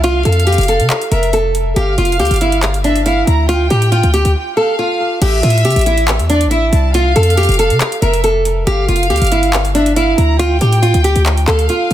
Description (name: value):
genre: hip hop, trap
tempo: 139 BPM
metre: 4/4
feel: half-time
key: A phrygian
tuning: A4 = 441 Hz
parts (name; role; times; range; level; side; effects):
- nylon-string guitar; melody; 0.0-11.9 s; D4 to Bb4; -15 LUFS; right 1 dB; digital delay
- warm studio violin section; second line; 0.0-11.9 s; D5 to Bb5; -20 LUFS; left 1 dB; digital delay
- hard-hitting 808-style bass; bass; 0.0-11.9 s; F1 to C3; -14 LUFS; equal; none
- trap drum kit; drums; 0.0-11.9 s; crash cymbal, handclaps, hi-hat; -21 LUFS; equal; none
room: light reverb, studio reverb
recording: dense, heavily limited modern master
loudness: -11 LUFS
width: side -12 dB against mid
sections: 0.0-5.2 A section; 5.2-11.9 B section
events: break 4.4-5.2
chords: 0.0 F; 1.8 G5; 3.5 Dm; 5.2 Am; 6.9 F; 8.7 G5; 10.4 Dm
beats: | 0.04 0.47 0.90 1.33 | 1.76 2.19 2.63 3.06 | 3.49 3.92 4.35 4.78 | 5.22 5.65 6.08 6.51 | 6.94 7.37 7.81 8.24 | 8.67 9.10 9.53 9.96 | 10.40 10.83 11.26 11.69